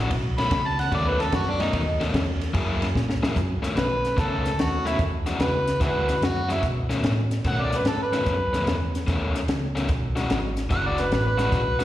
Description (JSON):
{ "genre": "electric blues shuffle", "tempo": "147 BPM", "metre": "4/4", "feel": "swing 67% on 8ths", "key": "B mixolydian", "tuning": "A4 = 440 Hz", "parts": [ { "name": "overdriven electric guitar", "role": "riff", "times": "0.0-11.8 s", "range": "B2 to G#4", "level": "-29 LUFS", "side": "left 2 dB", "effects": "slapback echo" }, { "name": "vintage muted fingered electric bass", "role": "bass", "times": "0.0-11.8 s", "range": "F#1 to B2", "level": "-27 LUFS", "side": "equal", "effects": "none" }, { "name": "compact cocktail drum kit", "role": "drums", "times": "0.1-11.8 s", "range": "hi-hat, kick drum, ride cymbal, snare drum", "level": "-27 LUFS", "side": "equal", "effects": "slapback echo" }, { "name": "overdriven harmonica", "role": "melody", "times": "0.4-11.8 s", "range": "D4 to B5", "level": "-26 LUFS", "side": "equal", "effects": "plate reverb, slapback echo" } ], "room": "light reverb", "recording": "live gig heard through the venue's PA, recital hall reverb", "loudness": "-22 LUFS", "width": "side -13 dB against mid", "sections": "0.0-3.4 A section; 3.4-11.8 B section", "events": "harmonica solo 0.0-3.4; drum fill 3.0-3.4", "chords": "0.1 B9; 2.5 F#9; 3.4 B9; 5.0 E9; 6.6 B9; 9.9 E9" }